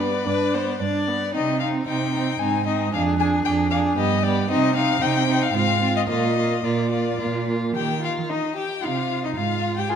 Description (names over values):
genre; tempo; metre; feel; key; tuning
quick classical-period movement for string quartet; 107-118 BPM; 3/4; rubato; Eb major from 4.5 s; A4 = 441 Hz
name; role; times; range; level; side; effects
rich violin; melody; 0.0-10.0 s; D5 to Ab5; -26 LUFS; left 8 dB; none
rich violin; second line; 0.0-10.0 s; Eb4 to D5; -26 LUFS; left 2 dB; none
rich viola; accompaniment; 0.0-10.0 s; Bb3 to F4; -26 LUFS; right 3 dB; none
rich cello; bass; 0.0-9.8 s; F2 to Eb3; -25 LUFS; right 6 dB; none
room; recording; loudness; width
wet recital hall reverb, RT60 1.6 s; none; -20 LUFS; side -8 dB against mid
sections
0.0-7.8 A section; 7.8-10.0 B section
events
none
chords
0.0 G; 1.3 Cm; 2.4 Ab; 2.9 Ddim/F; 4.0 G; 4.5 Cm; 5.5 Fm/Ab; 6.1 Bb; 7.8 Ebadd9; 8.8 Cm; 9.4 Fm/Ab